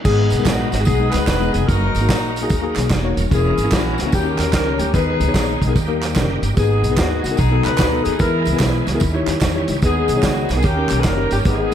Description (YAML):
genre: uptempo gospel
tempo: 147 BPM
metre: 4/4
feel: swing 66% on 8ths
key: G# minor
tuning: A4 = 440 Hz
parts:
  - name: mellow saxophone section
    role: melody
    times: 0.0-11.7 s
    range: A#3 to B4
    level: -22 LUFS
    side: left 3 dB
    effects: tape echo
  - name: mellow tine electric piano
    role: accompaniment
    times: 0.0-11.7 s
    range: G#2 to C#5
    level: -22 LUFS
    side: left 3 dB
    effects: medium stereo tremolo
  - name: bright tonewheel organ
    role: sustained chords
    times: 0.0-11.7 s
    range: D3 to B4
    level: -29 LUFS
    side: right 4 dB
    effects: slow rotary speaker, chorus vibrato
  - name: upright bass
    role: bass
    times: 0.0-11.7 s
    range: D#1 to E2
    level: -20 LUFS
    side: right 1 dB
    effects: none
  - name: warm soul drum kit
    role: drums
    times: 0.0-11.6 s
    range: crash cymbal, hi-hat, kick drum, snare drum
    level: -20 LUFS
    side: right 1 dB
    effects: none
  - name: tambourine and handclaps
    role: percussion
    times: 0.0-11.7 s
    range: none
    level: -32 LUFS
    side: right 6 dB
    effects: none
room: moderate plate reverb, RT60 1.3 s, small room reverb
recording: dreamy mix soaked in reverb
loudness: -15 LUFS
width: side -9 dB against mid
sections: 0.1-11.7 A section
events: none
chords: 0.1 G#m; 1.7 D#m/F#; 3.3 A#dim/E; 4.1 D#7; 4.9 G#m; 5.8 D#; 6.6 G#m; 7.4 B7; 8.2 E; 9.0 D#7b9; 9.8 G#m; 10.6 D#7